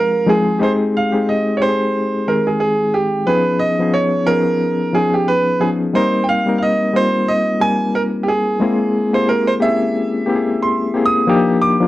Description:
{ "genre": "R&B", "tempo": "90 BPM", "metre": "4/4", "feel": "swing 58% on 16ths", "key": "unclear", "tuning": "A4 = 445 Hz", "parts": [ { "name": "bright concert grand piano", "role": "melody", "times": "0.0-11.9 s", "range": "G4 to Eb6", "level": "-17 LUFS", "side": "right 2 dB", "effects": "none" }, { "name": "barky reed electric piano", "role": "accompaniment", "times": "0.0-11.9 s", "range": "Eb3 to Bb4", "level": "-17 LUFS", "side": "left 2 dB", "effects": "overdrive, fast tremolo" } ], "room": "light reverb", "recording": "dry, close 1970s-style studio recording", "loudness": "-14 LUFS", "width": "side -16 dB against mid", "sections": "0.6-11.3 A section", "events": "none", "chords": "0.0 Fm7; 0.6 Abmaj7; 3.3 Db9; 5.9 Eb6; 8.6 C7b13; 11.3 Ebmaj9" }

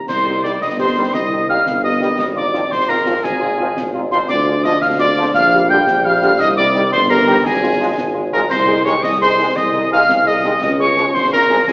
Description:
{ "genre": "military-style march for wind band", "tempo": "114 BPM (dotted quarters)", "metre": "6/8", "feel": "straight", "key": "Ab major from 8.5 s", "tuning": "A4 = 440 Hz", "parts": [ { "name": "wooden piccolo", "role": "second line", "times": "0.0-11.7 s", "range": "Ab5 to G6", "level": "-20 LUFS", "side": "equal", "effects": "none" }, { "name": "mellow tuba", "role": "bass", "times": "0.0-11.7 s", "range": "G1 to D2", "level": "-23 LUFS", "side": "equal", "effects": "none" }, { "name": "mellow cornet", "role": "melody", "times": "0.1-11.7 s", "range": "Ab4 to G5", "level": "-20 LUFS", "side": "equal", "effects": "none" }, { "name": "concert snare drum, clash cymbals and concert bass drum", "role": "drums", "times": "0.1-11.7 s", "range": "none", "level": "-31 LUFS", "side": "equal", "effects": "none" }, { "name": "mellow French horn section", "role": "accompaniment", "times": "0.3-11.6 s", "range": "G3 to Ab4", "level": "-26 LUFS", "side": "equal", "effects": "none" }, { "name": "dark trombone section", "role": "sustained chords", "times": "0.4-11.6 s", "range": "D3 to Ab3", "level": "-28 LUFS", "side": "equal", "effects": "none" } ], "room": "wet recital hall reverb, RT60 1.6 s", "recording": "recorded in a church or concert hall, AM radio sound", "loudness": "-16 LUFS", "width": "mono", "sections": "0.1-11.7 A section", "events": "none", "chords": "0.1 Cm; 2.2 Fm7/Ab; 4.3 Ddim; 5.4 Gm/Bb; 6.4 Cm; 7.5 Fm/Ab; 8.5 Ab/C; 10.6 Db" }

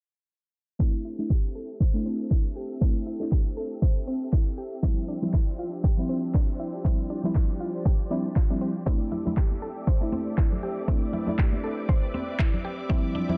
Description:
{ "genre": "deep house", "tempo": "119 BPM", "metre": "4/4", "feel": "swing 57% on 16ths", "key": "unclear", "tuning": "A4 = 440 Hz", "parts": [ { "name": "soft string machine", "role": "sustained chords", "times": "0.8-13.4 s", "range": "F3 to E5", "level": "-41 LUFS", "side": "equal", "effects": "ensemble chorus, sidechain pumping" }, { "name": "mallet-like synth pluck", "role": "arpeggios", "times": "0.8-13.2 s", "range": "C4 to C5", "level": "-38 LUFS", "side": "equal", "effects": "chorus, sidechain pumping, dub echo" }, { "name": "deep mellow chord stab", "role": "stabs", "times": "0.8-13.4 s", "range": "F3 to E4", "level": "-34 LUFS", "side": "equal", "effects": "chorus, sidechain pumping, dub echo" }, { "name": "electronic kick drum", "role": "drums", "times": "0.8-13.0 s", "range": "none", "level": "-26 LUFS", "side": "equal", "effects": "none" }, { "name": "electronic handclaps", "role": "drums", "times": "1.3-12.5 s", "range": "none", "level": "-42 LUFS", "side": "equal", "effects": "none" }, { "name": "congas", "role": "percussion", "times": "8.9-13.4 s", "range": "none", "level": "-37 LUFS", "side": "equal", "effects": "sidechain pumping on perc" }, { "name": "bright symphonic violin section", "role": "texture", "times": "8.9-13.4 s", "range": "D5 to D6", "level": "-44 LUFS", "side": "equal", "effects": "sidechain pumping" } ], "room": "light reverb", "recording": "dense, heavily limited modern master, low-pass filter", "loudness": "-27 LUFS", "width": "mono", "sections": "0.8-13.4 A section", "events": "filter sweep on synth stab 0.8-13.4; filter sweep on synth arpeggio sound 0.8-13.4; filter sweep 0.8-13.4", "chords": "0.8 C6; 4.8 Dm11; 8.9 C6" }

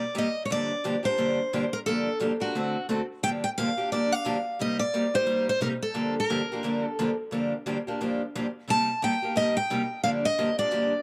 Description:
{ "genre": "jazz", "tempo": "176 BPM", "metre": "4/4", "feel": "swing 60% on 8ths", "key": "G minor", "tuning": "A4 = 440 Hz", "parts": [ { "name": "picked steel-string acoustic guitar", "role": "melody", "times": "0.0-11.0 s", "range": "F#4 to A5", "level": "-29 LUFS", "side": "equal", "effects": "none" }, { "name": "picked steel-string acoustic guitar", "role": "accompaniment", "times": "0.1-10.9 s", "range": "G2 to A4", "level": "-31 LUFS", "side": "equal", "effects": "none" } ], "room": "moderate spring reverb, RT60 2.6 s", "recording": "close, detailed microphones", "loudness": "-27 LUFS", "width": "mono", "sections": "0.0-3.2 A section; 3.2-11.0 A section", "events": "none", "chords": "0.5 Gm7; 2.5 D7; 3.2 Gm7; 4.6 Cm9; 6.0 Gm7; 8.7 Cm7; 10.0 Gm7" }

